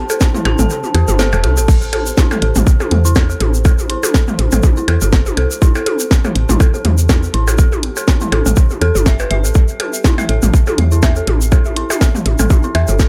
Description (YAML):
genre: minimal techno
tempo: 122 BPM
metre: 4/4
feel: swing 56% on 16ths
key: A minor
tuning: A4 = 440 Hz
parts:
  - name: woody FM bass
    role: bass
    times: 0.0-13.1 s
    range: E1 to E2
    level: -17 LUFS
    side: equal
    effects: sidechain pumping
  - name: deep dark ambient pad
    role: texture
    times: 0.0-13.1 s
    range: G4 to A5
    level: -32 LUFS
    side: equal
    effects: none
  - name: dark detuned synth bell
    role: riff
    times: 0.1-12.9 s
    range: E4 to A5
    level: -24 LUFS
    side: equal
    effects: chorus, phaser, sidechain pumping, dub echo
  - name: garage drum kit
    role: drums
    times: 0.1-13.1 s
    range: crash cymbal, hi-hat, snare drum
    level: -23 LUFS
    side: equal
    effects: small room ambience, dub echo
  - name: egg shaker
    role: percussion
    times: 0.1-13.1 s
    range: none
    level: -27 LUFS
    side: equal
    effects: none
  - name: electronic percussion blips and toms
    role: percussion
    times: 0.1-13.0 s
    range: none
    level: -23 LUFS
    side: equal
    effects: small room ambience, tape echo
  - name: electronic kick drum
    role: drums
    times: 0.2-13.1 s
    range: none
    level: -14 LUFS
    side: equal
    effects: small room ambience
  - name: swell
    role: sound effects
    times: 0.9-1.7 s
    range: none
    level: -35 LUFS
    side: equal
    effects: none
room: little or no reverb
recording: echo-heavy mix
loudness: -14 LUFS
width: mono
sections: 0.0-13.1 A section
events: kick drops out 0.7-1.7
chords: 0.0 Am7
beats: 0.21 0.70 1.19 | 1.68 2.17 2.67 3.16 | 3.65 4.14 4.63 5.13 | 5.62 6.11 6.60 7.09 | 7.58 8.08 8.57 9.06 | 9.55 10.04 10.54 11.03 | 11.52 12.01 12.50 12.99